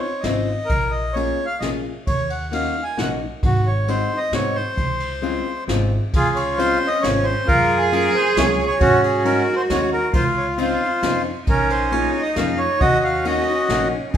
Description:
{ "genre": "musette waltz", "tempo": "134 BPM", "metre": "3/4", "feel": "straight", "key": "Db major", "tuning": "A4 = 440 Hz", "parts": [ { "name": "accordion", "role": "melody", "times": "0.0-14.2 s", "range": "Db4 to Ab5", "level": "-20 LUFS", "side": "equal", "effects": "none" }, { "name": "hollow-body jazz guitar", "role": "accompaniment", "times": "0.2-13.9 s", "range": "Gb3 to Ab4", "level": "-25 LUFS", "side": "left 4 dB", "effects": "none" }, { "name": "upright bass", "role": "bass", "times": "0.2-14.2 s", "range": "Ab1 to Ab2", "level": "-26 LUFS", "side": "equal", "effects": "none" }, { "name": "jazz brush drum kit", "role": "drums", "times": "0.2-14.2 s", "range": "kick drum, ride cymbal, snare drum", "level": "-25 LUFS", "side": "right 1 dB", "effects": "none" }, { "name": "warm cello", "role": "second line", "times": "6.1-14.2 s", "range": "Db4 to Ab4", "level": "-24 LUFS", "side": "right 3 dB", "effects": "none" } ], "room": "wet large studio reverb, RT60 0.9 s", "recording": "band playing live in one room", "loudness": "-17 LUFS", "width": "side -9 dB against mid", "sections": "0.0-6.1 A section; 6.1-14.2 A section", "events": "none", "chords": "0.0 Dbmaj9; 0.7 Bbm7; 2.1 Ebm7; 3.4 Ab7; 4.8 Dbmaj7; 7.5 Gbmaj7; 8.8 Ab7sus4; 10.1 Dbmaj9; 11.5 Bbm7; 12.8 Ebm7", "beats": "0.24 | 0.70 1.16 1.62 | 2.07 2.53 2.98 | 3.43 3.88 4.33 | 4.78 5.23 5.68 | 6.13 6.58 7.03 | 7.48 7.92 8.37 | 8.80 9.25 9.69 | 10.13 10.57 11.02 | 11.47 11.92 12.36 | 12.81 13.25 13.69 | 14.14" }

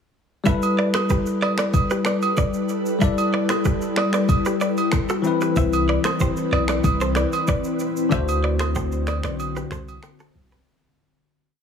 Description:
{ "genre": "afrobeats", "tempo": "94 BPM", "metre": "4/4", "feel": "straight", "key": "G major", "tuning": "A4 = 440 Hz", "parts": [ { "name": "bell-like tine electric piano", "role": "accompaniment", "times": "0.4-10.7 s", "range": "D3 to D5", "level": "-25 LUFS", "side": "left 4 dB", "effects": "wide subtle chorus" }, { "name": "ethereal airy pad", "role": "sustained chords", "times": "1.6-10.6 s", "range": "D3 to B4", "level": "-26 LUFS", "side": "left 2 dB", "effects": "ensemble chorus, built-in reverb" }, { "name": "direct-recorded clean electric guitar", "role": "riff", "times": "0.5-10.6 s", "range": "F#4 to E5", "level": "-27 LUFS", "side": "right 3 dB", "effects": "warbly pitch drift, tape echo" }, { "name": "afro-pop drum kit", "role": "drums", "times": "0.5-10.7 s", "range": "finger snaps, kick drum, rim click, shaker", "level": "-24 LUFS", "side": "equal", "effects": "none" }, { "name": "agogo bells and woodblock", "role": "percussion", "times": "0.6-10.2 s", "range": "none", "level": "-28 LUFS", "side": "right 6 dB", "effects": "none" }, { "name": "punchy sub bass", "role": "bass", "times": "5.6-10.6 s", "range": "B1 to D2", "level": "-24 LUFS", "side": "equal", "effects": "none" } ], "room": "light reverb", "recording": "heavily compressed radio sound, multiband compression", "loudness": "-19 LUFS", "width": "side -7 dB against mid", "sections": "0.5-10.7 verse", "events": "fade-out 8.1-10.7; break 9.4-10.7", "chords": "0.5 G69; 5.2 Cmaj7; 8.1 D7", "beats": "| 0.46 1.10 1.74 2.37 | 3.01 3.65 4.29 4.93 | 5.57 6.20 6.84 7.48 | 8.12 8.76 9.39 10.03" }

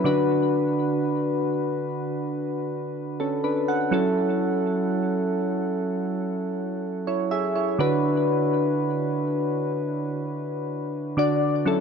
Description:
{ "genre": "R&B", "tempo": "62 BPM", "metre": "4/4", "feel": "straight", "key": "unclear", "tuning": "A4 = 440 Hz", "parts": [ { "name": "soft electric-piano-like synth keys", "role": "solo", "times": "0.0-11.8 s", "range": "D3 to F#5", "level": "-22 LUFS", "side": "equal", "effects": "chorus, ping-pong delay" } ], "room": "moderate plate reverb, RT60 3.7 s", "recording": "none", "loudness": "-22 LUFS", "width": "side -6 dB against mid", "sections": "0.0-11.8 A section", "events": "none", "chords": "0.0 D6; 3.9 F#m7; 7.8 D6", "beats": "| 0.05 1.02 1.98 2.95 | 3.92 4.89 5.86 6.82 | 7.79 8.76 9.73 10.69 | 11.66" }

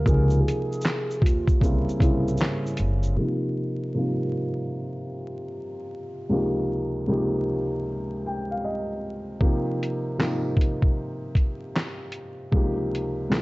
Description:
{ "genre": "lo-fi hip hop", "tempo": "77 BPM", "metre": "4/4", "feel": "swing 64% on 16ths", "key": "F minor", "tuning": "A4 = 442 Hz", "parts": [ { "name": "warbly nostalgic lead", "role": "melody", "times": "0.0-2.8 s", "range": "E4 to Bb4", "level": "-32 LUFS", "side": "equal", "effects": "chorus, analog delay" }, { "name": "dark upright piano", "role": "accompaniment", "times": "0.0-13.4 s", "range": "Db2 to G5", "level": "-26 LUFS", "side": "equal", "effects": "cassette tape, low-pass filter" }, { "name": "upright bass", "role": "bass", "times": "0.0-3.1 s", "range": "Gb1 to Eb2", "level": "-24 LUFS", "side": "equal", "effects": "none" }, { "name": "lo-fi sampler-style drum kit", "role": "drums", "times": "0.1-3.2, 9.4-13.4 s", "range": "handclaps, hi-hat, kick drum, shaker, snare drum", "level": "-22 LUFS", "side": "equal", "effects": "none" } ], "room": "light reverb", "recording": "dark, warm production, vinyl crackle, nothing above 7.8 kHz", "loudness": "-23 LUFS", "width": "side -21 dB against mid", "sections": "0.0-3.2 A section; 3.2-13.4 B section", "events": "filter sweep on upright piano 3.2-13.4; upright piano fill 7.8-9.4", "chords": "0.1 Dbmaj9; 1.6 C7b9; 3.2 F9sus4; 6.3 Dbmaj9; 9.4 F9sus4; 12.5 Dbmaj9", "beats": "| 0.06 0.84 1.61 2.40 | 3.17 3.95 4.73 5.51 | 6.29 7.07 7.85 8.63 | 9.41 10.19 10.97 11.74 | 12.53 13.30" }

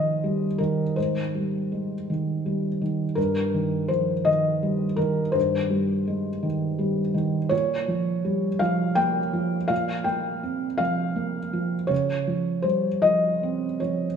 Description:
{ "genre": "neoclassical minimalist piano", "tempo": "55 BPM (dotted quarters)", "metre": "6/8", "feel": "rubato", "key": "Ab major", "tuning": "A4 = 441 Hz", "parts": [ { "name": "felt-muted upright piano", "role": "solo", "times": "0.0-14.2 s", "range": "G2 to G5", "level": "-22 LUFS", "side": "equal", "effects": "none" } ], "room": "wet recital hall reverb, RT60 1.3 s", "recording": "none", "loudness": "-22 LUFS", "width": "side -7 dB against mid", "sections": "0.0-14.2 A section", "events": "none", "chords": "0.0 Abmaj7; 3.2 Eb6/G; 7.5 Bbm; 11.9 Dbmaj7", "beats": "| 0.97 2.08 | 3.17 4.27 | 5.36 6.44 | 7.52 8.61 | 9.71 10.81 | 11.91 13.04" }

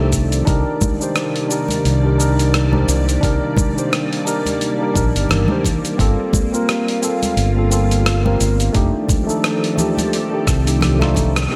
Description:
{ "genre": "sunset chillout", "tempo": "87 BPM", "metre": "4/4", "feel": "swing 57% on 16ths", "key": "C dorian", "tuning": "A4 = 440 Hz", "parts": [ { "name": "tine electric piano", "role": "accompaniment", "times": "0.0-11.6 s", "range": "C3 to C5", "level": "-23 LUFS", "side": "equal", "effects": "low-pass filter, tape echo" }, { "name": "soft string machine", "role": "sustained chords", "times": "0.0-11.6 s", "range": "C3 to D5", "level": "-25 LUFS", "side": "equal", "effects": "ensemble chorus" }, { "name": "fingered electric bass", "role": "bass", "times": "0.0-11.5 s", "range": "F1 to C2", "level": "-19 LUFS", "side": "equal", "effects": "none" }, { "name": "dusty soul sampler-style drum kit", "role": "drums", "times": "0.1-11.6 s", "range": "crash cymbal, hi-hat, rim click, shaker", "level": "-26 LUFS", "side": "equal", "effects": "overdrive, low-pass filter on hats, low-pass filter on perc, low-pass filter on snare, low-pass filter on cymbals" }, { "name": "electronic kick drum", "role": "drums", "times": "0.1-11.3 s", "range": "none", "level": "-22 LUFS", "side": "equal", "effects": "overdrive" }, { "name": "congas", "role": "percussion", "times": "0.8-11.3 s", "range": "none", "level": "-26 LUFS", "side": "equal", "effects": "none" } ], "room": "moderate lush hall reverb, RT60 1.7 s", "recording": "dreamy mix soaked in reverb", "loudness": "-17 LUFS", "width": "mono", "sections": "0.0-11.5 A section", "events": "drum fill 10.5-11.5; band accent 11.3", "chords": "0.5 Cm9; 6.0 Gm11; 8.7 F13", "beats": "| 0.47 1.16 1.85 2.54 | 3.23 3.92 4.61 5.30 | 5.99 6.68 7.37 8.06 | 8.75 9.44 10.13 10.82 | 11.51" }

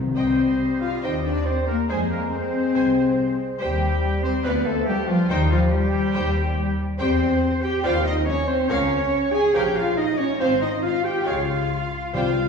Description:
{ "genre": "quick classical-period movement for symphony orchestra", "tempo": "140 BPM", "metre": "4/4", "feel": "rubato", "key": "C minor", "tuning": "A4 = 439 Hz", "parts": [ { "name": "rich studio viola section", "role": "accompaniment", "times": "0.0-12.4 s", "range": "Eb3 to Eb5", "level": "-33 LUFS", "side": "right 2 dB", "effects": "none" }, { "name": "timpani", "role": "percussion", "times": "0.0-0.8, 12.1-12.5 s", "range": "C3", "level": "-26 LUFS", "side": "left 4 dB", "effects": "none" }, { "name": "warm symphonic violin section", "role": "melody", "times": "0.2-12.4 s", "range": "F5 to Ab5", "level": "-37 LUFS", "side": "left 3 dB", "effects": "none" }, { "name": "clear clarinet", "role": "second line", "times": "0.2-12.3 s", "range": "Bb4 to Eb5", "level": "-35 LUFS", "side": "equal", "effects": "none" }, { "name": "clear oboe", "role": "second line", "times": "0.2-12.5 s", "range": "Eb4 to Ab5", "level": "-34 LUFS", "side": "right 2 dB", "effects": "none" }, { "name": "mellow flute section", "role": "second line", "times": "0.2-12.5 s", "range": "Eb4 to Ab5", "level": "-33 LUFS", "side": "right 1 dB", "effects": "none" }, { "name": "warm studio violin section", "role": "second line", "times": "0.2-12.5 s", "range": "Eb4 to Ab5", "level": "-34 LUFS", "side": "right 1 dB", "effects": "none" }, { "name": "mellow bassoon", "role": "accompaniment", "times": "0.2-12.3 s", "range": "F3 to Ab3", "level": "-34 LUFS", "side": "right 1 dB", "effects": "none" }, { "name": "warm French horn section", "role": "sustained chords", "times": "0.2-12.5 s", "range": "Eb3 to Ab4", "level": "-24 LUFS", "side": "left 2 dB", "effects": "none" }, { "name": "bright trumpet", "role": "stabs", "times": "0.2-12.5 s", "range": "Eb4 to Ab5", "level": "-32 LUFS", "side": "right 1 dB", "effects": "none" }, { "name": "rich studio cello section", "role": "bass", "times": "0.2-12.5 s", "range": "Eb3 to Ab4", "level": "-28 LUFS", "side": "right 1 dB", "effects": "none" }, { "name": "rich studio double bass section", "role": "bass", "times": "0.2-12.5 s", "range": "Ab1 to F2", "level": "-26 LUFS", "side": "equal", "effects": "none" } ], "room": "wet scoring stage reverb, RT60 1.7 s", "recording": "heard from further back in the room, studio reverb", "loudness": "-19 LUFS", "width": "side -5 dB against mid", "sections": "0.2-12.5 A section", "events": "timpani fill 0.0", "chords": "0.2 Cm; 1.0 Cm/Eb; 1.9 Fm; 3.6 Cm/Eb; 4.4 Bdim/D; 5.3 Cm/Eb; 7.0 C/E; 7.8 Cm/Eb; 8.7 Bbm/Db; 9.5 Bbm; 10.4 Fm/Ab; 11.3 Db", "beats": "| 0.16 0.60 1.03 1.46 | 1.89 2.32 2.75 3.17 | 3.60 4.03 4.45 4.87 | 5.29 5.72 6.14 6.57 | 6.99 7.42 7.84 8.27 | 8.69 9.12 9.55 9.97 | 10.41 10.84 11.27 11.71 | 12.15" }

